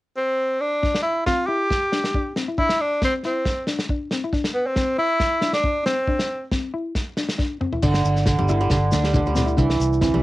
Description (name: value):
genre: highlife guitar band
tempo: 137 BPM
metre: 4/4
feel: swing 53% on 16ths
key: unclear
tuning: A4 = 441 Hz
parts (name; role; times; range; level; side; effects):
- bright tenor saxophone; melody; 0.2-6.5 s; B3 to G4; -21 LUFS; equal; cassette tape
- mellow electric guitar; accompaniment; 0.8-10.2 s; C4 to E4; -27 LUFS; left 4 dB; cassette tape
- warm soul drum kit; drums; 0.8-10.1 s; crash cymbal, kick drum, snare drum, toms; -25 LUFS; equal; cassette tape
- qanun; arpeggios; 7.8-10.2 s; D3 to D4; -21 LUFS; right 3 dB; cassette tape
- fingered electric bass; bass; 7.8-10.2 s; G1 to D2; -22 LUFS; equal; none
- shekere; percussion; 7.8-10.1 s; none; -26 LUFS; equal; none
- congas; percussion; 8.4-10.2 s; none; -28 LUFS; left 1 dB; none
room: light reverb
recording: home recording on cassette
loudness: -19 LUFS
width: side -17 dB against mid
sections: 0.8-7.8 A section; 7.8-10.2 B section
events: drum fill 7.4-7.8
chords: 0.0 N.C.; 0.8 Cadd9; 7.8 G5; 9.6 C